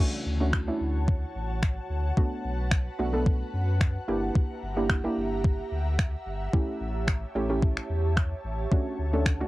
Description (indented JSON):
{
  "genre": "dance-pop",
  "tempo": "110 BPM",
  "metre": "4/4",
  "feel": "straight",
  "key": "D major",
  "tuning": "A4 = 440 Hz",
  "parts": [
    { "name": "soft round pluck", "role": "accompaniment", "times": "0.0-9.5 s", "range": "A3 to A4", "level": "-30 LUFS", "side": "right 1 dB", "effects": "chorus, sidechain pumping" },
    { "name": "ethereal airy pad", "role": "sustained chords", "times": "0.1-9.5 s", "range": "F#4 to Bb5", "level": "-36 LUFS", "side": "equal", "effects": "ensemble chorus, built-in reverb, sidechain pumping" },
    { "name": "saturated sub bass", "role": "bass", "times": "0.3-9.4 s", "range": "G1 to F#2", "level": "-29 LUFS", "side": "equal", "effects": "sidechain pumping" },
    { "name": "clean 12-bit digital drum machine", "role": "drums", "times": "0.5-9.4 s", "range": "finger snaps, kick drum", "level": "-25 LUFS", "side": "equal", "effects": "overdrive, cassette tape" }
  ],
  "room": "light reverb",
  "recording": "home recording on cassette",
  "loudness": "-25 LUFS",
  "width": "side -18 dB against mid",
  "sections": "0.0-9.5 A section",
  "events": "none",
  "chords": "0.0 Dmaj7; 2.2 Bm7; 4.1 Gm6; 6.5 A7; 8.7 Dmaj7"
}